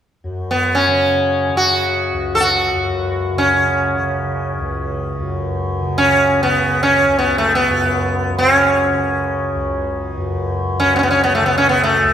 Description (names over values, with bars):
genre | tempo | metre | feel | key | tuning
indian classical, Hindustani | free time | none | none | unclear | A4 = 440 Hz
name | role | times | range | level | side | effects
tanpura | drone | 0.2-12.1 s | C#2 to C#3 | -21 LUFS | equal | none
sitar | melody | 0.5-12.1 s | A3 to A4 | -15 LUFS | equal | none
room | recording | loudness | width
wet scoring stage reverb, RT60 1.7 s | recorded in a church or concert hall | -14 LUFS | side -9 dB against mid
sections
0.2-12.1 A section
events
none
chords
none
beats
free time